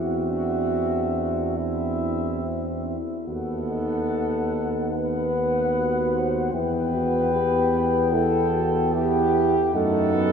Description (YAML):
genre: classical, hymn-like piece for brass band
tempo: 70-76 BPM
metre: 4/4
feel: rubato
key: E minor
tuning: A4 = 440 Hz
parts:
  - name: mellow flugelhorn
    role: melody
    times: 0.0-10.3 s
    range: E5 to G5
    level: -30 LUFS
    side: left 6 dB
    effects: none
  - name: warm French horn section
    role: second line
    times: 0.0-10.3 s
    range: E4 to C5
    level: -25 LUFS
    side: right 2 dB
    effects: none
  - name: clear trombone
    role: accompaniment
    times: 0.0-10.3 s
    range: A3 to C4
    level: -31 LUFS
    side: right 3 dB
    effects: none
  - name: warm euphonium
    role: accompaniment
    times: 0.0-10.3 s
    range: C4 to G4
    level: -29 LUFS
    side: left 3 dB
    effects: none
  - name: warm tuba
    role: bass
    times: 0.0-10.3 s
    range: D#2 to F#2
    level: -27 LUFS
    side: equal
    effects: none
room: wet cathedral reverb, RT60 5.3 s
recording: minimal, uncompressed stereo recording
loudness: -21 LUFS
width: side -6 dB against mid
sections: 0.0-10.3 A section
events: none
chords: 0.0 D9/E; 3.3 B7/D#; 6.5 Em; 9.7 B7/F#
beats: 0.73 1.58 2.44 | 3.28 4.12 4.93 5.74 | 6.54 7.34 8.13 8.94 | 9.75